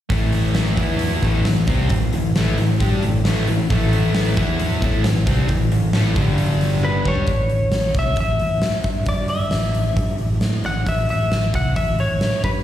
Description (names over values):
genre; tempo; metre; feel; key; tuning
hard rock; 134 BPM; 4/4; straight; unclear; A4 = 436 Hz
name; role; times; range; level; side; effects
overdriven electric guitar; riff; 0.1-7.3 s; G2 to G4; -26 LUFS; right 10 dB; slapback echo
sludgy distorted guitar; riff; 0.1-7.3 s; G2 to G4; -23 LUFS; left 8 dB; overdrive, slapback echo
picked electric bass; bass; 0.1-12.6 s; G1 to A2; -20 LUFS; equal; none
huge arena drum kit; drums; 0.1-12.5 s; hi-hat, kick drum, snare drum, toms; -22 LUFS; right 1 dB; none
lightly driven lead guitar; melody; 6.8-12.5 s; B4 to F#5; -23 LUFS; left 2 dB; slapback echo, digital delay
room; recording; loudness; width
studio ambience; live gig heard through the venue's PA, recital hall reverb; -17 LUFS; side -12 dB against mid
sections
0.1-7.3 A section; 7.3-12.6 B section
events
drum fill 6.8-7.3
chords
0.1 A5; 0.8 E5; 1.2 A5; 4.4 E5; 4.8 A5; 6.2 G5; 7.3 A; 8.8 Em7/G; 9.5 A5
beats
| 0.11 0.56 1.01 1.46 | 1.91 2.36 2.81 3.25 | 3.70 4.15 4.60 5.05 | 5.49 5.94 6.39 6.83 | 7.28 7.73 8.18 8.62 | 9.07 9.52 9.97 10.42 | 10.87 11.32 11.77 12.22